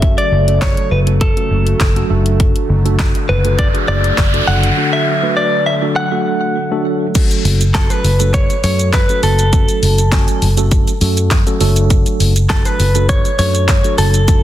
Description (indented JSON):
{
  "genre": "dance-pop",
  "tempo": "101 BPM",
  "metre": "4/4",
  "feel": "straight",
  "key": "F# minor",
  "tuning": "A4 = 440 Hz",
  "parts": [
    { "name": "direct-recorded clean electric guitar", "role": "melody", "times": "0.0-14.4 s", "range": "A4 to F#5", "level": "-18 LUFS", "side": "equal", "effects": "spring reverb, digital delay" },
    { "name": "mellow tine electric piano", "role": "accompaniment", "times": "0.0-14.4 s", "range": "F#3 to G#5", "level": "-21 LUFS", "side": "right 2 dB", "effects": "medium stereo tremolo, sidechain pumping" },
    { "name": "warm analog pad", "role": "sustained chords", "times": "0.0-7.1 s", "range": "C#3 to A3", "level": "-22 LUFS", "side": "equal", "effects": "chorus, sidechain pumping" },
    { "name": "vintage muted fingered electric bass", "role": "bass", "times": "0.0-14.4 s", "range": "F#1 to F#2", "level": "-14 LUFS", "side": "equal", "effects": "sidechain pumping" },
    { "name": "pop drum kit", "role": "drums", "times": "0.0-14.4 s", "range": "crash cymbal, handclaps, hi-hat, kick drum, shaker, snare drum", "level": "-15 LUFS", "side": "equal", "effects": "soft clipping on snare" },
    { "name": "noise sweep", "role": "sound effects", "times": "3.2-6.0 s", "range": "none", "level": "-21 LUFS", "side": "equal", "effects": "none" }
  ],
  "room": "light reverb",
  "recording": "dense, heavily limited modern master",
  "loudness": "-11 LUFS",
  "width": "side -12 dB against mid",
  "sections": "0.0-7.2 A section; 7.2-14.4 B section",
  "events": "noise sweep 3.2-7.2",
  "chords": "0.0 F#m; 2.1 D/F#; 7.2 F#m; 11.6 D/F#"
}